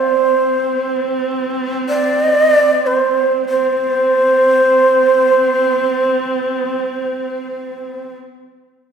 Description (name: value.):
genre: mongolian traditional, Mongolian folk.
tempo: free time.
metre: none.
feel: none.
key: unclear.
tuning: A4 = 439 Hz.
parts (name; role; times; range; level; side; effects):
breathy mellow shakuhachi; melody; 0.0-8.1 s; C5 to D5; -13 LUFS; right 2 dB; none.
dark horsehead fiddle; drone; 0.0-8.1 s; C4; -23 LUFS; right 1 dB; none.
room: wet recital hall reverb, RT60 1.5 s.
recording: heard from further back in the room.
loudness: -13 LUFS.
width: side -7 dB against mid.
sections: 0.0-3.5 A section; 3.5-8.5 B section.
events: slowing down 0.0-3.5.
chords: none.